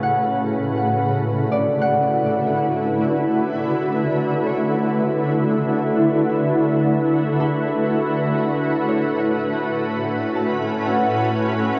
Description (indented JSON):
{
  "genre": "ambient",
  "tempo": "61 BPM",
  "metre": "4/4",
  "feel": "straight",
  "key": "D major",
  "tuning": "A4 = 438 Hz",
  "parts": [
    { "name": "shimmering ambient pad", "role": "sustained chords", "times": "0.0-11.8 s", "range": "A2 to B4", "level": "-21 LUFS", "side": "equal", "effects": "chorus, built-in reverb" },
    { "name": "concert harp", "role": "arpeggios", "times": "0.0-11.8 s", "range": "A4 to A5", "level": "-28 LUFS", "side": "equal", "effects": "delay" },
    { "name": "wind-like tuned noise texture", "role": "texture", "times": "0.0-1.0 s", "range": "A5", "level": "-54 LUFS", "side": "equal", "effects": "none" }
  ],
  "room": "wet huge ambient reverb, RT60 8.2 s",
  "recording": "worn, warbling old tape, cassette tape, warbly pitch drift",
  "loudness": "-20 LUFS",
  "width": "mono",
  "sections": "0.0-1.0 A section; 1.0-11.8 B section",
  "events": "none",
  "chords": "0.0 A6; 1.0 D6; 8.9 A6"
}